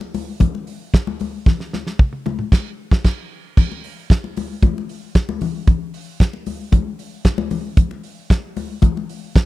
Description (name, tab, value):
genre	disco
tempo	114 BPM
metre	4/4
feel	straight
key	none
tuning	none
part	congas	percussion	0.0-9.1 s	none	-24 LUFS	left 7 dB	none
part	damped 70s drum kit	drums	0.1-9.5 s	crash cymbal, hi-hat, kick drum, snare drum, toms	-13 LUFS	equal	none
room	small room ambience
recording	dry, close 1970s-style studio recording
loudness	-17 LUFS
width	side -17 dB against mid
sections	0.0-3.6 A section; 3.6-9.5 B section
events	drum fill 1.5-3.6; band accent 2.5-3.6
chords	none